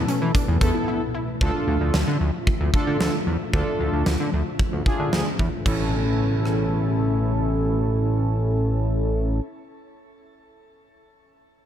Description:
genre	synth-pop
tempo	113 BPM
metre	4/4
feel	straight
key	A major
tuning	A4 = 439 Hz
part	felt-muted upright piano	melody	0.0-0.8 s	A4	-41 LUFS	right 1 dB	none
part	string machine, cellos	sustained chords	0.0-9.4 s	B2 to G#5	-30 LUFS	left 1 dB	ensemble chorus, low-pass filter
part	chorused synth bass	bass	0.0-9.4 s	A1 to E3	-23 LUFS	equal	none
part	wide unison pluck	arpeggios	0.1-1.3 s	C#4 to E4	-32 LUFS	left 2 dB	digital delay, shimmer reverb
part	huge arena drum kit	drums	0.1-6.6 s	crash cymbal, hi-hat, kick drum, rim click, snare drum	-24 LUFS	equal	gated reverb
part	analog synth brass	accompaniment	0.6-9.4 s	B3 to A4	-27 LUFS	equal	chorus, low-pass filter, shimmer reverb
room	light reverb, small room ambience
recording	none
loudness	-20 LUFS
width	side -10 dB against mid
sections	0.0-1.4 A section; 1.4-5.7 B section; 5.7-9.9 C section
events	break 0.9-1.4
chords	0.0 Asus2; 1.4 Dmadd9; 5.7 Amaj9

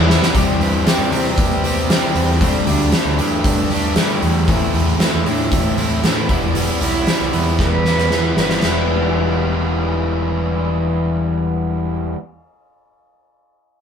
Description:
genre	quiet-loud alternative rock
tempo	116 BPM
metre	4/4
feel	straight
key	E minor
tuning	A4 = 440 Hz
part	distorted electric guitar	riff	0.0-12.2 s	A2 to G4	-20 LUFS	equal	distortion
part	growling picked electric bass	bass	0.0-12.1 s	E1 to C3	-21 LUFS	equal	overdrive
part	oversized low-tuned drum kit	drums	0.1-8.7 s	crash cymbal, hi-hat, kick drum, snare drum	-18 LUFS	equal	none
part	picked plugged-in old ladder-braced acoustic guitar	arpeggios	0.3-12.2 s	E2 to E4	-27 LUFS	left 6 dB	none
part	dark cello	melody	1.1-8.6 s	A3 to B4	-24 LUFS	right 2 dB	none
room	light reverb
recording	band playing live in one room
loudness	-15 LUFS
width	side -7 dB against mid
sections	0.3-8.6 A section; 8.6-12.8 B section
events	drum fill 0.1, 7.6-8.6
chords	0.3 C; 2.4 Gsus2; 4.5 Am; 6.3 Em

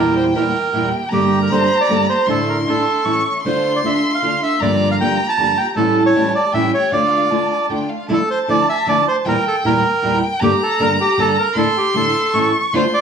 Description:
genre	tango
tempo	155 BPM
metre	3/4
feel	rubato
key	D minor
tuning	A4 = 440 Hz
part	bandoneon	melody	0.0-13.0 s	G4 to A5	-18 LUFS	right 2 dB	slapback echo
part	dark violin	second line	0.0-13.0 s	F5 to C#6	-21 LUFS	left 1 dB	none
part	flamenco guitar	accompaniment	0.0-12.8 s	E2 to A4	-19 LUFS	equal	none
part	warm symphonic string section	stabs	0.0-8.1, 12.7-12.9 s	A3 to A4	-26 LUFS	right 1 dB	none
room	wet club reverb, RT60 0.5 s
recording	vinyl crackle, small room ambience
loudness	-14 LUFS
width	side -7 dB against mid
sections	0.0-8.1 A section; 8.1-13.0 B section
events	none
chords	0.0 Edim; 1.1 Gmadd9; 2.3 Asus4; 3.1 A; 3.4 Dm; 4.6 Gm7; 5.8 A7; 6.9 Dm; 8.1 Dmadd9; 9.3 Edim; 10.4 Gmadd9; 11.6 Asus4; 12.3 A

